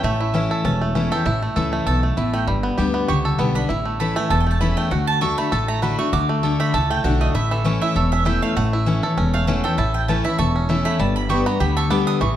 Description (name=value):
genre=bluegrass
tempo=197 BPM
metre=4/4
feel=swing 54% on 8ths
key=A mixolydian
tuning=A4 = 440 Hz
part: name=bluegrass banjo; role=melody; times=0.0-12.4 s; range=E3 to A4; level=-24 LUFS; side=right 2 dB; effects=none
part: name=picked steel-string acoustic guitar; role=accompaniment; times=0.0-12.4 s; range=E2 to G4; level=-22 LUFS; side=left 3 dB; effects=none
part: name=mandolin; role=stabs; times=0.0-12.4 s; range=A4 to D#6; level=-26 LUFS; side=right 5 dB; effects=none
part: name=upright bass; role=bass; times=0.0-12.4 s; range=E1 to D2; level=-23 LUFS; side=equal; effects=none
room=moderate large studio reverb, RT60 1.3 s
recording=none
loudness=-18 LUFS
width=side -11 dB against mid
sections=0.0-12.4 A section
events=mandolin solo 0.0-12.4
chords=0.0 A; 2.5 G; 3.7 A; 4.9 D; 7.3 A; 11.0 G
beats=| 0.04 0.35 0.65 0.96 | 1.26 1.56 1.87 2.17 | 2.48 2.78 3.09 3.39 | 3.70 4.00 4.31 4.61 | 4.91 5.22 5.52 5.83 | 6.13 6.44 6.74 7.04 | 7.35 7.65 7.96 8.26 | 8.56 8.87 9.17 9.48 | 9.78 10.09 10.39 10.69 | 11.00 11.30 11.61 11.91 | 12.21